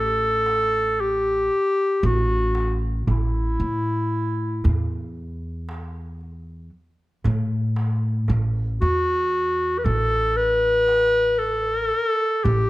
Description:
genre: Turkish makam ensemble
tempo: 115 BPM (eighths)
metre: 10/8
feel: straight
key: A makam huseyni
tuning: A4 = 440 Hz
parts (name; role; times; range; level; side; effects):
- clear clarinet; melody; 0.0-12.7 s; E4 to B4-30c; -20 LUFS; left 1 dB; none
- upright bass; bass; 0.0-12.7 s; A1 to A2; -25 LUFS; equal; none
- darbuka; percussion; 0.5-12.7 s; none; -26 LUFS; right 2 dB; none
room: light reverb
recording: none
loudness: -19 LUFS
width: side -17 dB against mid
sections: 0.0-12.7 A section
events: none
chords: none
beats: 0.48 1.00 1.52 2.04 2.56 | 3.08 3.60 4.12 4.64 5.16 5.68 6.21 6.73 7.25 7.77 | 8.29 8.81 9.33 9.85 10.38 10.90 11.42 11.94 12.46

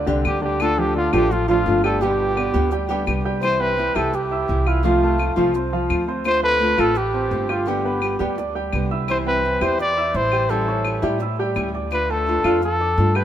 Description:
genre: latin, Cuban son and guajira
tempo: 170 BPM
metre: 4/4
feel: straight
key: C major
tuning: A4 = 440 Hz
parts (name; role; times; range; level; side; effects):
- warm concert grand piano; arpeggios; 0.0-13.2 s; D3 to G6; -25 LUFS; right 2 dB; none
- upright bass; bass; 0.0-13.2 s; G1 to A2; -25 LUFS; equal; none
- nylon-string guitar; accompaniment; 0.1-13.2 s; B2 to G4; -25 LUFS; left 1 dB; none
- claves; percussion; 0.2-13.2 s; none; -31 LUFS; left 6 dB; none
- breathy trumpet; melody; 0.3-13.2 s; E4 to D5; -22 LUFS; equal; none
room: moderate plate reverb, RT60 3.3 s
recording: minimal, uncompressed stereo recording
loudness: -18 LUFS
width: side -10 dB against mid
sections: 0.0-3.4 A section; 3.4-13.2 B section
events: none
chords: 0.0 Csus2; 0.6 Dm; 2.0 G; 3.4 C; 4.8 F/C; 6.3 Dm7; 7.7 G; 9.1 C; 10.5 A7; 11.9 Dm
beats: 0.25 | 0.60 0.95 1.31 1.66 | 2.01 2.37 2.72 3.08 | 3.43 3.78 4.13 4.49 | 4.84 5.20 5.55 5.90 | 6.26 6.61 6.96 7.32 | 7.67 8.03 8.38 8.73 | 9.09 9.44 9.79 10.15 | 10.50 10.86 11.21 11.56 | 11.92 12.27 12.62 12.98

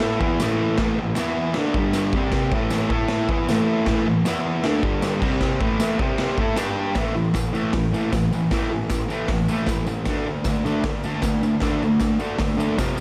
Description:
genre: garage rock duo or trio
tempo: 155 BPM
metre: 4/4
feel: straight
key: unclear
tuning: A4 = 442 Hz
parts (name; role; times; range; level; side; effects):
- fuzz guitar; riff; 0.0-13.0 s; F2 to A4; -24 LUFS; equal; distortion
- raw garage drum kit; drums; 0.0-12.9 s; crash cymbal, hi-hat, kick drum, snare drum; -27 LUFS; equal; none
- tambourine; percussion; 0.4-13.0 s; none; -43 LUFS; equal; none
room: light reverb, small room ambience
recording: none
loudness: -22 LUFS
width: mono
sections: 0.0-7.0 A section; 7.0-13.0 B section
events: none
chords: 0.0 A5; 1.2 E5; 1.6 D5; 1.8 G5; 2.1 C5; 2.5 A5; 4.3 E5; 4.6 D5; 4.8 G5; 5.2 C5; 5.6 A5; 6.0 C5; 6.4 A5; 6.6 G5; 7.0 A5; 10.1 D5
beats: 0.02 0.40 | 0.79 1.17 1.56 1.94 | 2.33 2.72 3.10 3.49 | 3.87 4.26 4.65 5.03 | 5.42 5.80 6.19 6.58 | 6.97 7.35 7.74 8.13 | 8.52 8.91 9.29 9.68 | 10.07 10.46 10.85 11.23 | 11.62 12.01 12.40 12.79

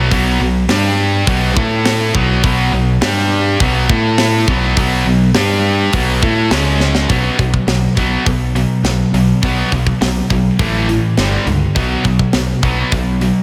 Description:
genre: hard rock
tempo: 103 BPM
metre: 4/4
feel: straight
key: B minor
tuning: A4 = 445 Hz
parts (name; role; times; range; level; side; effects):
- overdriven electric guitar; riff; 0.0-13.4 s; G2 to A4; -21 LUFS; equal; slapback echo
- tight distorted guitar; riff; 0.0-13.4 s; G2 to A4; -20 LUFS; equal; distortion
- modern bright picked electric bass; bass; 0.0-13.3 s; G1 to A2; -19 LUFS; equal; none
- tight metal drum kit; drums; 0.1-13.3 s; hi-hat, kick drum, snare drum; -21 LUFS; equal; none
room: moderate lush hall reverb, RT60 2.2 s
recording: big arena sound, faint mains hum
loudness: -14 LUFS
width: mono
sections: 0.0-7.1 A section; 7.1-13.4 B section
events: drum fill 6.8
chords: 0.0 B5; 0.7 G5; 1.3 B5; 1.6 A5; 2.1 B5; 3.0 G5; 3.6 B5; 3.9 A5; 4.5 B5; 5.3 G5; 5.9 B5; 6.5 C#5; 7.1 B5; 10.6 A5; 11.2 G5; 11.8 B5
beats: | 0.11 0.69 1.28 1.86 | 2.44 3.02 3.60 4.18 | 4.77 5.35 5.93 6.51 | 7.09 7.68 8.26 8.84 | 9.43 10.01 10.59 11.18 | 11.76 12.34 12.93

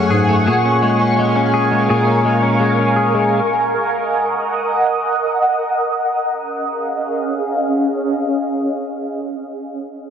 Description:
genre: dream pop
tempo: 84 BPM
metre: 4/4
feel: straight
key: Db major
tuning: A4 = 440 Hz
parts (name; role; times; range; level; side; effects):
- shimmering ambient pad; sustained chords; 0.0-9.5 s; Db4 to Eb6; -17 LUFS; right 1 dB; chorus, built-in reverb, phaser, low-pass filter
- direct-recorded clean electric guitar; arpeggios; 0.0-3.4 s; Gb2 to Ab4; -16 LUFS; left 1 dB; wide subtle chorus, low-pass filter, tape echo
room: wet plate reverb, RT60 3.0 s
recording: dense, heavily limited modern master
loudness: -15 LUFS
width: side -8 dB against mid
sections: 0.0-6.2 A section; 6.2-9.0 B section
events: filter sweep 0.0-6.2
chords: 0.5 Bbm7; 3.3 Ebm; 6.2 Dbadd9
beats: | 0.46 1.18 1.89 2.60 | 3.32 4.03 4.75 5.46 | 6.17 6.89 7.60 8.32

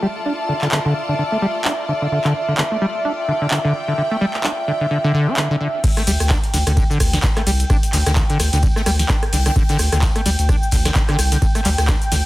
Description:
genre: acid house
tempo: 129 BPM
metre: 4/4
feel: swing 57% on 16ths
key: D minor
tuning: A4 = 440 Hz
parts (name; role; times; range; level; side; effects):
- warm analog pad; sustained chords; 0.0-12.3 s; E5 to G5; -25 LUFS; equal; chorus, sidechain pumping
- acid bass, saw; riff; 0.0-12.2 s; D3 to D4; -21 LUFS; equal; overdrive, analog chorus, cassette tape, tape echo
- rich studio string section; texture; 0.0-5.8 s; F4 to A5; -26 LUFS; left 2 dB; sidechain pumping
- booming analog drum machine; drums; 0.6-12.2 s; cabasa, crash cymbal, handclaps, hi-hat, ride cymbal, rim click, snare drum; -22 LUFS; equal; none
- compact cocktail drum kit; drums; 5.8-12.2 s; hi-hat, snare drum, tambourine; -32 LUFS; left 1 dB; high-pass filter on hats, soft clipping on snare, high-pass filter on snare, high-pass filter on perc, high-pass filter on room
- electronic kick drum; drums; 5.8-12.0 s; none; -18 LUFS; equal; none
- saturated sub bass; bass; 6.1-12.2 s; C2 to D2; -19 LUFS; equal; tube saturation, sidechain pumping
room: light reverb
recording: dense, heavily limited modern master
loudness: -16 LUFS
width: side -17 dB against mid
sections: 0.0-5.8 A section; 5.8-12.3 B section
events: filter sweep on analog synth pad 0.0-5.8; drop 5.8-12.3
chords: 0.0 Dm; 5.8 D5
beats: | 0.26 0.72 1.19 1.65 | 2.12 2.58 3.05 3.51 | 3.98 4.44 4.91 5.37 | 5.84 6.30 6.77 7.23 | 7.70 8.16 8.63 9.09 | 9.56 10.02 10.49 10.96 | 11.42 11.88

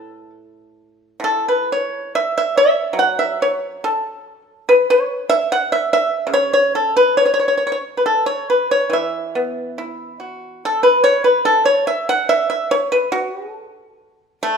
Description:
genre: chinese traditional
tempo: 71 BPM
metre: 2/4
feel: uneven beats, rubato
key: A gong mode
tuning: A4 = 441 Hz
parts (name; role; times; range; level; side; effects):
- pipa; solo; 0.0-14.6 s; A2 to F#5; -15 LUFS; equal; none
room: moderate recital hall reverb, RT60 1.5 s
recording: minimal, uncompressed stereo recording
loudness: -15 LUFS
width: side -6 dB against mid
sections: 0.0-1.2 A section; 1.2-14.6 B section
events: none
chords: none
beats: 0.31 | 1.24 2.13 | 2.98 3.81 | 4.65 5.48 | 6.30 7.15 | 8.04 8.93 | 9.79 10.62 | 11.44 12.28 | 13.12 13.98

